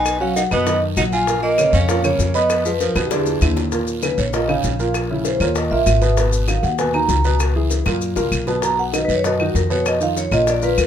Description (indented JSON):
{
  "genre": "Afro-Cuban jazz",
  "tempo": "196 BPM",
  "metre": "4/4",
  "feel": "straight",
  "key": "Eb minor",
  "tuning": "A4 = 440 Hz",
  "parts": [
    { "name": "vibraphone with medium mallets", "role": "melody", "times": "0.0-10.9 s", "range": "F#4 to Bb5", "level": "-20 LUFS", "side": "right 1 dB", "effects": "none" },
    { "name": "breathy tenor saxophone", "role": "second line", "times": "0.0-3.5 s", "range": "Eb3 to F4", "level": "-24 LUFS", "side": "right 3 dB", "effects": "none" },
    { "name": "warm baby grand piano", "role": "accompaniment", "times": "0.0-10.9 s", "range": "Bb2 to Cb6", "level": "-22 LUFS", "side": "equal", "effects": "none" },
    { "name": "upright bass", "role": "bass", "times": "0.0-10.9 s", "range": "Ab1 to F#2", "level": "-21 LUFS", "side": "left 1 dB", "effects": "none" },
    { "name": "bongos", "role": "percussion", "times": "0.1-10.9 s", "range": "none", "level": "-28 LUFS", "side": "left 5 dB", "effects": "none" },
    { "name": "claves", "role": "percussion", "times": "0.1-10.9 s", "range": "none", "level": "-28 LUFS", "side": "left 2 dB", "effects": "none" },
    { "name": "guiro", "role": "percussion", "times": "0.1-10.9 s", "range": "none", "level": "-33 LUFS", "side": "right 6 dB", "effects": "none" },
    { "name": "maracas", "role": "percussion", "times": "0.1-10.9 s", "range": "none", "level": "-31 LUFS", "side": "left 6 dB", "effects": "none" }
  ],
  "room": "light reverb",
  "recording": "minimal, uncompressed stereo recording",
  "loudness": "-16 LUFS",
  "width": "side -9 dB against mid",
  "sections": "0.0-3.7 A section; 3.7-10.9 B section",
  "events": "drum fill 3.0-3.7, 7.9-8.6; vibraphone solo 3.7-10.9",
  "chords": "0.1 B; 1.3 Bbm; 2.5 Abm69 (rootless); 3.1 E7; 3.7 Ebsus2; 4.9 Bbdim; 5.6 Eb5; 6.2 Abm9; 7.4 Dbm7; 8.0 Gb; 8.6 B; 9.9 Bmaj9#11"
}